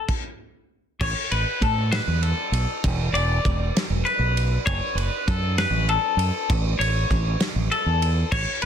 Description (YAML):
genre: math rock and midwest emo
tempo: 66 BPM (dotted quarters)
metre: 6/8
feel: straight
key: unclear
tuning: A4 = 439 Hz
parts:
  - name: twelve-string electric guitar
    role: arpeggios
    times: 0.0-8.7 s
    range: A4 to D5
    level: -25 LUFS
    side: left 4 dB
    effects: slapback echo
  - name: loose indie drum kit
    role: drums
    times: 0.1-8.7 s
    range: crash cymbal, kick drum, ride cymbal, snare drum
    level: -26 LUFS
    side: right 1 dB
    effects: none
  - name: overdriven fingered electric bass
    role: bass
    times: 1.0-8.7 s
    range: E1 to A2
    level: -23 LUFS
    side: right 1 dB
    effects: none
room: little or no reverb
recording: dense, heavily limited modern master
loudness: -20 LUFS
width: side -8 dB against mid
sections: 0.0-1.0 A section; 1.0-8.7 B section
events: stop 0.1-1.0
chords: 0.0 N.C.; 1.0 A; 2.8 E5; 4.7 F#madd11; 6.5 A